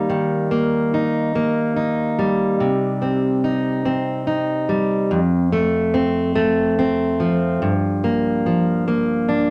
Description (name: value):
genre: pop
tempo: 48 BPM (dotted quarters)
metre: 6/8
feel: straight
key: unclear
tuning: A4 = 440 Hz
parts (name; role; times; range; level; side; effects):
- fingerpicked plugged-in steel-string acoustic guitar; solo; 0.0-9.5 s; F2 to Eb4; -20 LUFS; equal; none
room: wet small room reverb, RT60 0.5 s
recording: none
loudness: -20 LUFS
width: mono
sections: 0.0-7.6 A section; 7.6-9.5 B section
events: none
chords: 0.0 Eb; 2.6 Cm; 5.1 F; 7.6 Gm7